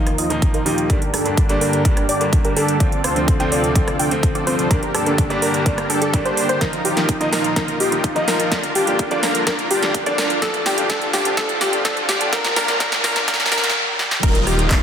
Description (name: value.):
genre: EDM, festival progressive house.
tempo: 126 BPM.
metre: 4/4.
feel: straight.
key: G minor.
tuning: A4 = 439 Hz.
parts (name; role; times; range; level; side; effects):
clear baby grand piano; accompaniment; 0.0-13.6 s; G2 to Eb4; -24 LUFS; right 1 dB; sidechain pumping, digital delay.
lush unison pad; sustained chords; 0.0-14.8 s; D2 to F4; -29 LUFS; equal; chorus, sidechain pumping.
wide unison pluck; arpeggios; 0.0-14.8 s; G4 to G5; -25 LUFS; left 1 dB; cassette tape, sidechain pumping, digital delay.
dense compressed supersaw; riff; 0.0-14.8 s; C4 to G5; -22 LUFS; equal; sidechain pumping, low-pass filter, digital delay.
riser and downlifter; sound effects; 6.5-14.8 s; none; -31 LUFS; equal; none.
big-room dance drum kit; drums; 0.1-14.8 s; crash cymbal, handclaps, hi-hat, rim click, snare drum; -22 LUFS; right 1 dB; small room ambience.
electronic kick drum; drums; 0.4-14.8 s; none; -19 LUFS; equal; small room ambience.
detuned saw bass; bass; 14.2-14.8 s; Eb1; -22 LUFS; equal; sidechain pumping.
room: wet digital room reverb, RT60 1.2 s.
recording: dense, heavily limited modern master, high-pass filter.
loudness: -16 LUFS.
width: side -8 dB against mid.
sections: 0.0-14.2 A section.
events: build-up 0.0-14.2; filter sweep on supersaw synth 0.0-14.2; filter sweep on synth pluck 0.0-14.2; filter sweep 0.0-14.2; drum fill 6.6-13.8, 14.0; stop 13.8-14.2.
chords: 0.0 Ebsus2; 0.9 Gm; 2.8 Dm7; 4.7 Gm; 6.6 Ebsus2; 8.5 Gm; 10.4 Dm7; 12.3 Gm; 14.2 Ebsus2.